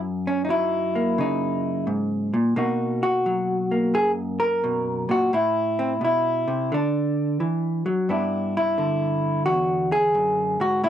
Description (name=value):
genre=solo jazz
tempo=87 BPM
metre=4/4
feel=swing 66% on 8ths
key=unclear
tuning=A4 = 441 Hz
part: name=vintage hollow-body jazz guitar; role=solo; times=0.0-10.9 s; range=E2 to A#4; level=-21 LUFS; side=equal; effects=cassette tape
room=moderate booth ambience, RT60 0.2 s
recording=home recording on cassette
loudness=-21 LUFS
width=side -10 dB against mid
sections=0.0-10.9 A section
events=none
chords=0.0 F#13; 2.6 Bmaj7; 5.3 Amadd9; 6.7 Dadd9; 8.1 G6; 9.5 E7